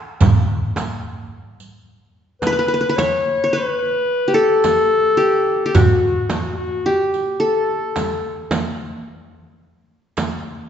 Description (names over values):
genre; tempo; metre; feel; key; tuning
Turkish makam ensemble; 108 BPM (eighths); 10/8; straight; unclear; A4 = 438 Hz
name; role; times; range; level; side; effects
darbuka; percussion; 0.2-10.4 s; none; -21 LUFS; right 2 dB; none
frame drum; percussion; 0.2-10.4 s; none; -22 LUFS; right 2 dB; none
riq; percussion; 0.2-10.4 s; none; -31 LUFS; right 3 dB; none
mellow clarinet; second line; 2.4-8.5 s; F#4 to C#5; -19 LUFS; left 3 dB; none
qanun; melody; 2.5-8.6 s; F#4 to C#5; -19 LUFS; equal; none
room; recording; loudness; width
wet recital hall reverb, RT60 1.7 s; recorded in a church or concert hall, nothing above 7.8 kHz; -16 LUFS; side -8 dB against mid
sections
0.2-10.7 A section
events
drum fill 0.0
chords
none